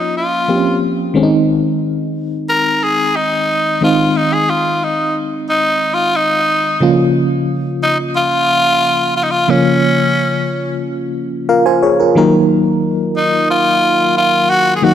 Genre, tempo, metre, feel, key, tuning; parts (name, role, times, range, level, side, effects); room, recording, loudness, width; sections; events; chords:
pop; 90 BPM; 4/4; straight; Bb minor from 6.8 s; A4 = 441 Hz
growling tenor saxophone; melody; 0.0-14.9 s; Db4 to Bb4; -14 LUFS; equal; digital delay
FM electric piano with auto-pan; accompaniment; 0.0-14.9 s; Db3 to Ab5; -15 LUFS; equal
moderate lush hall reverb, RT60 2.2 s; -12 LUFS; side -10 dB against mid
0.0-6.8 A section; 6.8-14.9 B section
tenor saxophone solo 0.0-6.8; FM electric piano fill 11.2-12.2
0.0 Bbm; 1.2 Ab; 6.8 Bbm; 12.2 Ebm